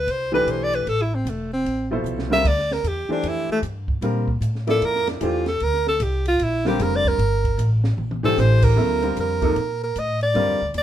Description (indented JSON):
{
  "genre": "modal jazz",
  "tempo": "152 BPM",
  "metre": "4/4",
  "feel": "swing 64% on 8ths",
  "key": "unclear",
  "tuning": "A4 = 441 Hz",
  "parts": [
    { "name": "clear alto saxophone", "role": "melody", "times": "0.0-10.8 s", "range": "A3 to E5", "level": "-22 LUFS", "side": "right 1 dB", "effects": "none" },
    { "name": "upright bass", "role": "bass", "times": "0.0-10.8 s", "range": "E1 to Bb2", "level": "-23 LUFS", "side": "equal", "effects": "none" },
    { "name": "compact cocktail drum kit", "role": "drums", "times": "0.1-10.8 s", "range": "crash cymbal, hi-hat, kick drum, ride cymbal, snare drum, toms", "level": "-27 LUFS", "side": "right 1 dB", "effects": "none" },
    { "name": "clear upright piano", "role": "accompaniment", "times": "0.3-10.6 s", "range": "B2 to D5", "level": "-24 LUFS", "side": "left 1 dB", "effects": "none" }
  ],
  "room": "light reverb",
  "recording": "minimal, uncompressed stereo recording",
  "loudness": "-19 LUFS",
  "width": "side -11 dB against mid",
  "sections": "0.0-8.8 A section; 8.8-10.8 A section",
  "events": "alto saxophone solo 0.0-10.8; drum fill 2.0-2.4, 8.0-8.4",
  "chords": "0.0 Am9; 2.4 Gm9",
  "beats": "0.07 0.47 | 0.86 1.26 1.65 2.05 | 2.45 2.84 3.24 3.63 | 4.03 4.42 4.82 5.22 | 5.61 6.01 6.40 6.80 | 7.19 7.59 7.98 8.38 | 8.77 9.17 9.56 9.96 | 10.35 10.75"
}